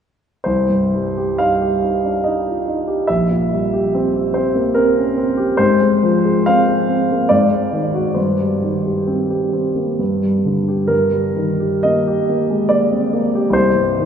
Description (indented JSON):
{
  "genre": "classical, romantic character piece for solo piano",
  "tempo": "62-74 BPM",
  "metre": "3/4",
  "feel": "rubato",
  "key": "C minor, Eb major from 10.9 s",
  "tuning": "A4 = 440 Hz",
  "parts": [
    { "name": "dark concert grand piano", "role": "solo", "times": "0.4-14.1 s", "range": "Bb1 to F5", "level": "-14 LUFS", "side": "equal", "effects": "none" }
  ],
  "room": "wet cathedral reverb, RT60 5.1 s",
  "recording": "recorded in a church or concert hall",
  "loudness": "-15 LUFS",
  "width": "side -8 dB against mid",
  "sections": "0.5-14.1 A section",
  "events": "none",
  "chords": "0.5 Cm; 3.1 C7/Bb; 5.6 Fm/Ab; 7.3 Ab5; 8.2 Cm/G; 10.0 G5; 10.9 Eb/G; 13.5 Cm"
}